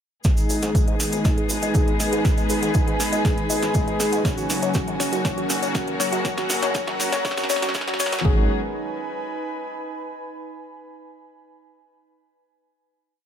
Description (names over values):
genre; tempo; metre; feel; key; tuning
melodic techno; 120 BPM; 4/4; straight; G# minor; A4 = 445 Hz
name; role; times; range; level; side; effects
warm studio string section; sustained chords; 0.2-8.5 s; C#3 to G#4; -30 LUFS; left 2 dB; sidechain pumping, low-pass filter
woody wave-folded pluck; arpeggios; 0.2-8.5 s; F#4 to D#5; -29 LUFS; left 2 dB; chorus, sidechain pumping, tape echo
brassy analog pad; stabs; 0.2-8.4 s; F#3 to G#4; -27 LUFS; left 1 dB; chorus, sidechain pumping, tape echo
gritty driven synth bass; bass; 0.2-8.5 s; F#1 to G#2; -34 LUFS; equal; none
electronic kick drum; drums; 0.2-8.3 s; none; -22 LUFS; equal; studio reverb
techno drum kit; drums; 0.2-8.3 s; hi-hat, snare drum; -29 LUFS; equal; high-pass filter on snare, studio reverb, sidechain pumping on hats, high-pass filter on hats
tube shaker; percussion; 0.2-8.2 s; none; -30 LUFS; right 2 dB; none
airy breathy pad; texture; 0.9-10.2 s; C#4 to B5; -30 LUFS; right 3 dB; chorus, sidechain pumping
room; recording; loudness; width
light reverb; high-pass filter; -20 LUFS; side -8 dB against mid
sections
0.2-8.2 build; 8.2-10.2 final chord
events
build-up 0.2-8.2; drum fill 0.2-8.2; filter sweep on synth pluck 0.2-8.2; filter sweep 0.2-8.2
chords
0.2 G#m; 4.2 F#; 8.2 G#m